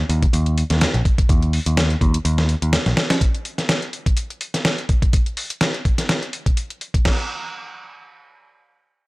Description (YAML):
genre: breakbeat, breaks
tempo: 125 BPM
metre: 4/4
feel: swing 55% on 16ths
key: unclear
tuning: A4 = 442 Hz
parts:
  - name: picked electric bass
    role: bass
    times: 0.0-2.9 s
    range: Bb1 to Eb2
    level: -18 LUFS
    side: equal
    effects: low-pass filter
  - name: dusty soul sampler-style drum kit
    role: drums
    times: 0.1-7.2 s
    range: crash cymbal, hi-hat, kick drum, snare drum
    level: -19 LUFS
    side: equal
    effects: none
  - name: electronic hi-hat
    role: drums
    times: 0.2-7.0 s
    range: none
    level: -31 LUFS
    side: left 2 dB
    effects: none
room: little or no reverb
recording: dry, gritty hardware recording, transformer saturation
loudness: -17 LUFS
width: side -23 dB against mid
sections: 0.0-7.1 A section; 7.1-9.1 B section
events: none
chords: none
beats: 0.33 0.81 | 1.29 1.77 2.25 2.73 | 3.21 3.69 4.17 4.65 | 5.13 5.61 6.09 6.57 | 7.05